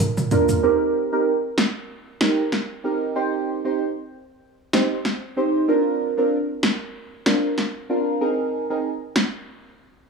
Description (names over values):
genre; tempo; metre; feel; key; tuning
dancehall; 95 BPM; 4/4; swing 56% on 16ths; unclear; A4 = 440 Hz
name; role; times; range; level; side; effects
deep house drum kit; drums; 0.0-9.3 s; hi-hat, snare drum, toms; -22 LUFS; equal; overdrive
tube shaker; percussion; 0.0-0.6 s; none; -34 LUFS; left 4 dB; none
deep mellow chord stab; accompaniment; 0.3-8.9 s; Bb3 to C5; -21 LUFS; right 2 dB; chorus, phaser
room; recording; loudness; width
wet spring reverb, RT60 2.3 s; studio reverb; -20 LUFS; side -4 dB against mid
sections
0.6-10.1 A section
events
drum fill 0.0-0.6; break 9.5-10.1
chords
0.0 Bb; 0.6 Eb6; 3.2 Cm; 5.7 Bbadd9; 8.2 Abadd9